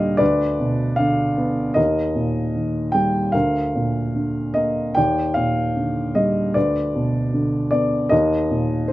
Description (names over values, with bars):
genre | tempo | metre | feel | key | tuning
classical, lyrical solo piano | 76 BPM | 4/4 | rubato | Eb major | A4 = 440 Hz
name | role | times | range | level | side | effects
dark upright piano | solo | 0.0-8.9 s | D2 to G5 | -18 LUFS | equal | none
room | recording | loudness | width
little or no reverb | close, detailed microphones | -18 LUFS | side -16 dB against mid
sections
0.0-8.9 A section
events
none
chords
0.2 Dm6; 1.8 Eb; 3.3 Bbadd11/D; 5.0 Ebmaj9; 6.6 Bm/D; 8.1 Cm7/Eb (rootless)